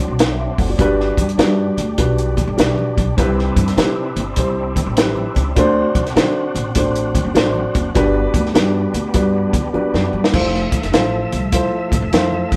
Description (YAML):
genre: uptempo 1960s-style soul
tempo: 101 BPM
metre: 4/4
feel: swing 66% on 8ths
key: G major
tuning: A4 = 440 Hz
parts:
  - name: dark upright piano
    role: accompaniment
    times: 0.0-12.6 s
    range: G2 to F#5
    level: -22 LUFS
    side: equal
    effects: none
  - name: overdriven tonewheel organ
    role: sustained chords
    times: 0.0-12.6 s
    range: F3 to E5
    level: -29 LUFS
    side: equal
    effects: fast rotary speaker, chorus vibrato
  - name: upright bass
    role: bass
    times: 0.1-12.6 s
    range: F1 to D3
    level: -23 LUFS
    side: equal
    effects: none
  - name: compact cocktail drum kit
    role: drums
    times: 0.2-12.6 s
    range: crash cymbal, hi-hat, kick drum, snare drum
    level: -20 LUFS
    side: equal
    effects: none
  - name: congas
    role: percussion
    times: 0.8-12.6 s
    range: none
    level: -30 LUFS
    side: equal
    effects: none
room: moderate stone room reverb, RT60 1.0 s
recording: band playing live in one room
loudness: -17 LUFS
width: mono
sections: 0.0-10.3 A section; 10.3-12.6 B section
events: drum fill 9.7-10.3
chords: 0.0 D7; 0.8 Gmaj7; 3.2 Cmaj7; 5.6 D7; 8.0 Gmaj7; 10.3 Fmaj7